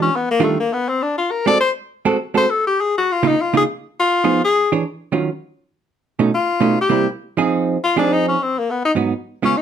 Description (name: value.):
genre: jazz.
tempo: 203 BPM.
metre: 4/4.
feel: swing 60% on 8ths.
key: unclear.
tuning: A4 = 440 Hz.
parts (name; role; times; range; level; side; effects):
clear tenor saxophone; melody; 0.0-9.6 s; A3 to D5; -17 LUFS; left 3 dB; none.
hollow-body jazz guitar; accompaniment; 0.0-9.5 s; Ab2 to C#5; -17 LUFS; right 5 dB; none.
room: moderate studio reverb, RT60 0.6 s.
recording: dark, warm production.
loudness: -16 LUFS.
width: side -9 dB against mid.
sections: 0.0-7.5 A section; 7.5-9.6 A section.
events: tenor saxophone solo 0.0-7.5, 7.5-9.6.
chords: 0.4 Ebmaj9; 1.6 Ab7b9; 2.8 Db69; 3.9 Fm7b5; 4.5 E6; 5.1 Ebm9; 6.3 B9; 6.9 C7; 7.5 Fm7; 8.7 Abm7.